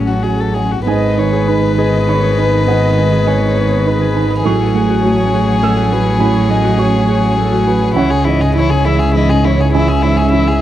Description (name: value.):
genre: neoclassical piano and strings.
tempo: 101 BPM.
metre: 3/4.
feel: rubato.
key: unclear.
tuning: A4 = 442 Hz.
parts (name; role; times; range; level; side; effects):
warm violin; melody; 0.0-10.6 s; E4 to B4; -18 LUFS; left 5 dB; tape echo.
warm cello; second line; 0.0-10.6 s; C#3 to F#3; -20 LUFS; right 3 dB; none.
felt-muted upright piano; accompaniment; 0.0-10.6 s; C#2 to E6; -18 LUFS; right 7 dB; none.
dark chamber string section; sustained chords; 0.0-10.6 s; B3 to G#5; -26 LUFS; left 2 dB; none.
warm double bass; bass; 0.0-10.6 s; G#1 to C#2; -16 LUFS; left 1 dB; none.
dark viola; accompaniment; 0.9-10.6 s; G#4 to E5; -22 LUFS; right 1 dB; none.
Celtic harp; arpeggios; 0.9-10.6 s; A3 to G#5; -23 LUFS; left 4 dB; none.
room: little or no reverb.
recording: dry, close 1970s-style studio recording.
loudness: -11 LUFS.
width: side -12 dB against mid.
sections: 0.9-10.6 A section.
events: none.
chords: 0.0 F#madd9/A; 0.9 G#m; 4.5 F#madd9/A; 8.0 C#m.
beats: 0.23 | 0.87 1.48 2.08 | 2.67 3.27 3.86 | 4.45 5.04 5.62 | 6.20 6.78 7.37 | 7.96 8.55 9.15 | 9.74 10.33.